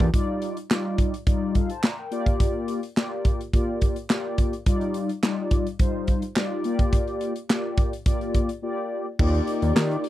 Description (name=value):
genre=early-eighties boogie funk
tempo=106 BPM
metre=4/4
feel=straight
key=unclear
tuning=A4 = 440 Hz
part: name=mellow synth brass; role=accompaniment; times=0.0-10.0 s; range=G3 to Bb5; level=-27 LUFS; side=left 2 dB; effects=chorus
part: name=fat analog bass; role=bass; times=0.0-0.1, 9.2-10.0 s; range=Eb2 to Eb3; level=-22 LUFS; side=equal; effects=none
part: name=modern studio drum kit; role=drums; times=0.0-10.1 s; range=crash cymbal, handclaps, hi-hat, kick drum, snare drum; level=-22 LUFS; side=equal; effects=none
part: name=group handclap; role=percussion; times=0.7-9.9 s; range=none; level=-34 LUFS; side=right 5 dB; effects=none
room=little or no reverb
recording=dry, close 1970s-style studio recording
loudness=-22 LUFS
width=side -14 dB against mid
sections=0.1-9.2 A section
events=break 8.6-9.2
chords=0.1 Ebmaj9; 2.1 Gm7; 4.7 Ebmaj9; 6.6 Gm7; 9.2 Ebmaj9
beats=| 0.14 0.70 1.27 1.83 | 2.40 2.97 3.53 4.10 | 4.66 5.23 5.80 6.36 | 6.93 7.49 8.06 8.63 | 9.19 9.76